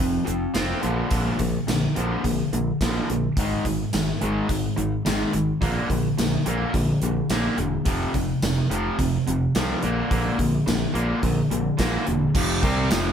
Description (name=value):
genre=classic rock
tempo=107 BPM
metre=4/4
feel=straight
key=unclear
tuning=A4 = 440 Hz
part: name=distorted electric guitar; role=riff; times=0.0-13.1 s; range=F2 to F4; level=-23 LUFS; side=equal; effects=distortion
part: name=modern bright fingered electric bass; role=bass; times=0.0-13.1 s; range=E1 to C2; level=-27 LUFS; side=equal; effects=none
part: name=gated 80s drum kit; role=drums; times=0.3-13.0 s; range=crash cymbal, hi-hat, kick drum, snare drum, tambourine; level=-26 LUFS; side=equal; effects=none
room=moderate studio reverb, RT60 0.9 s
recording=band playing live in one room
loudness=-21 LUFS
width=side -8 dB against mid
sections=0.0-12.4 A section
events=none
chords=0.0 F5; 0.8 Bb; 3.4 Ab5; 5.6 Bb; 7.9 F5; 9.8 Bb; 12.4 F5